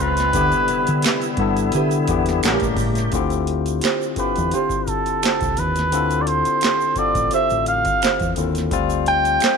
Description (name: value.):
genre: R&B, neo-soul.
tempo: 86 BPM.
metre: 4/4.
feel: swing 54% on 16ths.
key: D dorian.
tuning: A4 = 444 Hz.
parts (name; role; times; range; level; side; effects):
trumpet with cup mute; melody; 0.0-9.6 s; A4 to G5; -20 LUFS; right 2 dB; none.
barky tine electric piano; accompaniment; 0.0-9.6 s; A2 to Bb4; -23 LUFS; left 13 dB; overdrive.
bright tonewheel organ; sustained chords; 0.0-3.1 s; C3 to G4; -27 LUFS; equal; slow rotary speaker.
deep dub fingered electric bass; bass; 0.0-9.4 s; A1 to D3; -23 LUFS; right 1 dB; none.
booming analog drum machine; drums; 0.2-9.6 s; handclaps, hi-hat, kick drum, snare drum; -25 LUFS; right 1 dB; none.
tube shaker and finger snaps; percussion; 0.2-9.6 s; none; -31 LUFS; right 19 dB; none.
flamenco guitar; second line; 1.0-9.6 s; C#4 to C5; -25 LUFS; right 14 dB; none.
room: light reverb, small room ambience.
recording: 1960s-style stereo with parts hard left and right.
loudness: -17 LUFS.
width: side -5 dB against mid.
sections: 0.0-3.1 A section; 3.1-9.6 B section.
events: none.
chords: 0.3 Cmaj7/D; 2.4 A7b9; 3.1 Dm11; 8.7 G7sus4/D.